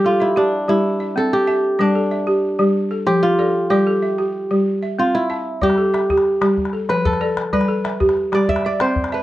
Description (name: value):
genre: west african traditional, West African string and xylophone music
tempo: 126 BPM (dotted quarters)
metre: 12/8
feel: straight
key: G mixolydian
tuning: A4 = 440 Hz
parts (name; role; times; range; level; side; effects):
- kora; melody; 0.0-9.2 s; D4 to E5; -19 LUFS; equal; none
- balafon; arpeggios; 0.0-9.2 s; F3 to A5; -19 LUFS; equal; none
- calabash; percussion; 5.6-9.2 s; none; -25 LUFS; left 2 dB; none
room: light reverb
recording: worn, warbling old tape, cassette tape, warbly pitch drift, nothing above 10.4 kHz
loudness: -16 LUFS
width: side -15 dB against mid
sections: 0.0-9.2 A section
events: kora solo 0.0-9.2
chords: 0.0 G5; 0.8 C; 1.8 G5; 2.8 F; 3.7 G5; 4.7 C; 5.6 G5; 6.6 F; 7.5 G; 8.5 C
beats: 0.36 0.84 1.32 | 1.80 2.27 2.75 3.23 | 3.71 4.19 4.66 5.14 | 5.62 6.10 6.57 7.05 | 7.53 8.01 8.48 8.96